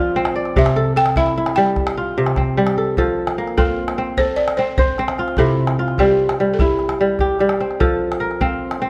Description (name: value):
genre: west african traditional, West African string and xylophone music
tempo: 99 BPM (dotted quarters)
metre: 12/8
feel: straight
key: F major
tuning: A4 = 441 Hz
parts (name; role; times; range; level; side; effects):
- kora; arpeggios; 0.0-8.9 s; C3 to D5; -20 LUFS; equal; none
- calabash; percussion; 0.3-8.8 s; none; -25 LUFS; equal; none
- balafon; melody; 0.6-7.0 s; G4 to G5; -22 LUFS; equal; none
room: moderate recital hall reverb, RT60 1.5 s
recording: none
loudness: -18 LUFS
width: mono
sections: 0.0-3.0 A section; 3.0-8.9 B section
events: balafon solo 0.0-3.0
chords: 0.0 F5; 0.6 C; 3.0 F; 5.4 C; 7.8 F